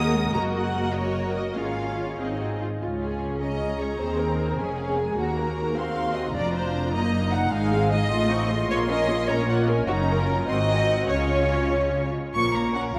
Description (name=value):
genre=quick classical-period movement for string orchestra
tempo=95-103 BPM (dotted quarters)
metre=6/8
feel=straight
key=Db major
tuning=A4 = 441 Hz
part: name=rich studio violin section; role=melody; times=0.0-13.0 s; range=Bb4 to Eb6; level=-37 LUFS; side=equal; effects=none
part: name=warm symphonic violin section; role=second line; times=0.0-13.0 s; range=F4 to Db6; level=-30 LUFS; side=equal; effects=none
part: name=rich symphonic viola section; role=accompaniment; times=0.0-13.0 s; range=F3 to Bb4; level=-29 LUFS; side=equal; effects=none
part: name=rich symphonic cello section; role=bass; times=0.0-13.0 s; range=Db2 to Bb4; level=-33 LUFS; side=equal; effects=none
part: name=warm symphonic double bass section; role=bass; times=0.0-13.0 s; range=F1 to Eb2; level=-32 LUFS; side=equal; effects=none
room=wet cathedral reverb, RT60 5.3 s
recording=in a vast, echoing space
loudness=-25 LUFS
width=mono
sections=0.0-2.8 A section; 2.8-12.3 B section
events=none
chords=0.3 Ebm/Gb; 1.6 Db/Ab; 2.2 Ab; 2.8 Db; 4.0 Abadd9/Eb; 4.6 Db/F; 5.2 Ebm; 6.4 Bbadd9/F; 6.9 Ebm/Gb; 7.5 Ab; 8.1 F7/A; 8.7 Bbm; 9.9 Ebm7/Gb; 10.5 Ab7; 11.1 Db; 12.3 Bbm